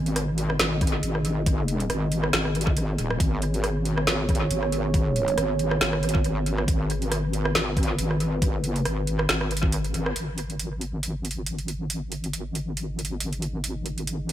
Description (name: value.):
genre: deep dubstep.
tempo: 138 BPM.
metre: 4/4.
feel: swing 55% on 16ths, half-time.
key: G# minor.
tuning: A4 = 438 Hz.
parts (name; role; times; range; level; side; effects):
dark analog pad; sustained chords; 0.0-14.3 s; B3 to D#5; -32 LUFS; right 3 dB; chorus, phaser.
wobble bass; bass; 0.0-14.3 s; D#1 to G#1; -26 LUFS; equal; chorus.
garage drum kit; drums; 0.1-14.3 s; hi-hat, rim click, snare drum; -28 LUFS; right 1 dB; overdrive, studio reverb, analog delay.
electronic kick drum; drums; 0.8-9.7 s; none; -24 LUFS; equal; overdrive, studio reverb.
room: little or no reverb.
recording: echo-heavy mix.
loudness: -23 LUFS.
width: side -12 dB against mid.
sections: 0.0-10.2 A section; 10.2-14.3 B section.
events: band accent 10.1.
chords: 0.0 G#m.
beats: 0.16 0.59 1.03 | 1.46 1.90 2.33 2.77 | 3.20 3.64 4.07 4.51 | 4.94 5.38 5.81 6.25 | 6.68 7.12 7.55 7.99 | 8.42 8.86 9.29 9.72 | 10.16 10.59 11.03 11.46 | 11.90 12.33 12.77 13.20 | 13.64 14.07.